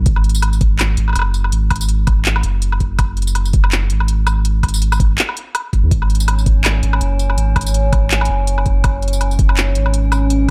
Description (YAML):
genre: half-time drum and bass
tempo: 164 BPM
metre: 4/4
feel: swing 57% on 16ths, half-time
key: unclear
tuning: A4 = 440 Hz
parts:
  - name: saturated sub bass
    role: bass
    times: 0.0-10.5 s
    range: F#1 to D#2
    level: -18 LUFS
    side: equal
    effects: tube saturation
  - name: electronic kick drum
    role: drums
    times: 0.1-9.5 s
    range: none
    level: -18 LUFS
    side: equal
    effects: studio reverb
  - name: organic electronic drum kit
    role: drums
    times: 0.1-10.4 s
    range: handclaps, hi-hat, tambourine, woodblock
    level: -23 LUFS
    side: equal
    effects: overdrive, studio reverb
  - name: metallic inharmonic drone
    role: texture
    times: 6.4-10.5 s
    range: C#4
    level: -26 LUFS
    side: equal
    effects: chorus, built-in reverb, phaser
room: little or no reverb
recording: none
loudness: -16 LUFS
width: mono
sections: 0.0-10.5 A section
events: none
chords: none